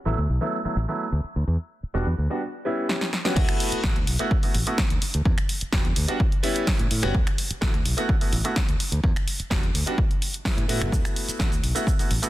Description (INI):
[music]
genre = filtered disco house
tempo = 127 BPM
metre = 4/4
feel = straight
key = D major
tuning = A4 = 440 Hz
[part]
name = clear baby grand piano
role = accompaniment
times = 0.1-12.3 s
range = F#3 to F#4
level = -28 LUFS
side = right 1 dB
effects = phaser, sidechain pumping, low-pass filter
[part]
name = modern bright fingered electric bass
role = bass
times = 0.1-12.2 s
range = E1 to A2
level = -26 LUFS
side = equal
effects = sidechain pumping, low-pass filter
[part]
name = punchy analog drum machine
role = drums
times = 2.9-12.3 s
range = crash cymbal, finger snaps, hi-hat, shaker, snare drum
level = -28 LUFS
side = equal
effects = sidechain pumping on cymbals, sidechain pumping on hats, sidechain pumping on perc
[part]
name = electronic kick drum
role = drums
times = 3.4-12.0 s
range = none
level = -24 LUFS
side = equal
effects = overdrive
[sound]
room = little or no reverb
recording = dense, heavily limited modern master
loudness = -22 LUFS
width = side -16 dB against mid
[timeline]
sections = 0.0-3.4 A section; 3.4-12.3 B section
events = filter sweep 0.0-3.4; drum fill 2.9-3.4; drop 3.4-12.3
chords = 0.0 D6; 1.5 Em7; 2.4 G(#11); 3.4 D6; 5.3 Em7; 6.2 A7; 7.1 D6; 9.0 Em7; 10.0 A7; 10.9 D6 (rootless)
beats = 0.06 0.53 1.00 | 1.48 1.95 2.42 2.89 | 3.37 3.84 4.31 4.78 | 5.25 5.73 6.20 6.67 | 7.14 7.62 8.09 8.56 | 9.04 9.51 9.98 10.45 | 10.92 11.40 11.87